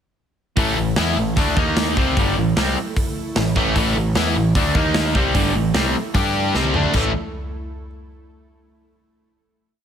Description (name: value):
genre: hard rock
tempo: 151 BPM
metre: 4/4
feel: straight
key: A phrygian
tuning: A4 = 440 Hz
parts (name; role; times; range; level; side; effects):
- airy breathy pad; sustained chords; 0.6-7.1 s; G3 to F5; -32 LUFS; right 1 dB; none
- overdriven electric guitar; riff; 0.6-7.1 s; G2 to G4; -24 LUFS; right 10 dB; phaser
- overdriven semi-hollow guitar; riff; 0.6-7.1 s; G2 to G4; -24 LUFS; left 10 dB; none
- sludgy distorted guitar; riff; 0.6-7.1 s; G2 to G4; -24 LUFS; equal; overdrive
- growling picked electric bass; bass; 0.6-7.1 s; G1 to G2; -24 LUFS; equal; overdrive
- big rock drum kit; drums; 0.6-7.0 s; hi-hat, kick drum, snare drum, splash cymbal, toms; -22 LUFS; equal; none
room: light reverb, studio reverb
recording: none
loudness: -17 LUFS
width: side -8 dB against mid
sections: 0.6-6.9 riff; 6.9-8.5 final chord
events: drum fill 6.5-6.9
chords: 0.6 A5; 1.6 D#5; 2.0 Am; 4.8 D#5; 5.2 Am; 6.2 G5; 6.5 Am; 6.9 A5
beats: | 0.58 0.98 1.37 1.77 | 2.17 2.57 2.97 3.36 | 3.76 4.16 4.56 4.95 | 5.35 5.75 6.15 6.55 | 6.95